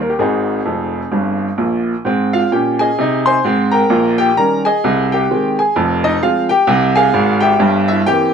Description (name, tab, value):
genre	jazz, stride piano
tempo	130 BPM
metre	4/4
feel	swing 60% on 8ths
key	Ab major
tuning	A4 = 440 Hz
part	bright upright piano	solo	0.0-8.3 s	F1 to C6	-12 LUFS	equal	none
room	moderate club reverb, RT60 0.5 s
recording	none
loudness	-12 LUFS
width	side -7 dB against mid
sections	0.0-2.1 A section; 2.1-8.3 B section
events	upright piano fill 0.7-2.1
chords	0.2 Ab; 3.9 Eb7/Bb; 4.8 Ab/C; 5.8 Fm; 7.6 C7/G